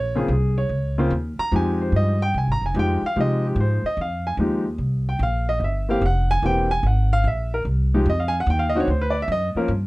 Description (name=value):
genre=jazz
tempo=147 BPM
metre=4/4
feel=swing 67% on 8ths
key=F minor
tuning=A4 = 439 Hz
part: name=warm baby grand piano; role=melody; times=0.0-9.7 s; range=Db3 to Bb5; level=-22 LUFS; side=equal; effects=none
part: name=upright bass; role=bass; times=0.0-9.9 s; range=E1 to C3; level=-22 LUFS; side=equal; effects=none
room=little or no reverb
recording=dry, close 1970s-style studio recording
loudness=-19 LUFS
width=side -20 dB against mid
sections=0.0-9.9 A section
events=grand piano solo 0.0-9.9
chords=0.0 Bbm9; 1.5 Fm9; 4.8 C7; 8.1 F5; 8.9 D